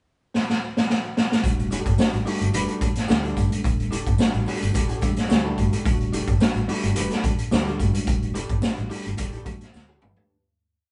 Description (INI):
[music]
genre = funk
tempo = 108 BPM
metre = 4/4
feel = straight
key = E minor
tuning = A4 = 440 Hz
[part]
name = raw garage drum kit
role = drums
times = 0.3-10.3 s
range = hi-hat, kick drum, snare drum, toms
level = -25 LUFS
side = equal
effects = none
[part]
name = bell-like tine electric piano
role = stabs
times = 1.4-10.4 s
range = G3 to D5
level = -30 LUFS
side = equal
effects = none
[part]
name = vintage muted fingered electric bass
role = bass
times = 1.4-10.1 s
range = E1 to E2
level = -29 LUFS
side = equal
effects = none
[part]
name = congas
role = percussion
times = 1.4-10.3 s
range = none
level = -38 LUFS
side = equal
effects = none
[part]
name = tambourine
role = percussion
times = 1.4-10.2 s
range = none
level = -48 LUFS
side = equal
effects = none
[part]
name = electric guitar at the edge of break-up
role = accompaniment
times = 1.7-10.3 s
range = D4 to B4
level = -36 LUFS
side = equal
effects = spring reverb
[sound]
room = moderate small room reverb, RT60 0.5 s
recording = band playing live in one room, nothing above 10.7 kHz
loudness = -23 LUFS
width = mono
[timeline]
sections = 0.0-1.4 pickup bar; 1.4-10.3 groove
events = drum fill 0.3-1.4, 9.7-10.3; fade-out 8.1-10.3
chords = 0.0 N.C.; 1.4 Em11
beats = 0.34 0.89 | 1.44 1.99 2.54 3.09 | 3.64 4.19 4.75 5.30 | 5.85 6.41 6.96 7.52 | 8.07 8.63 9.18 9.74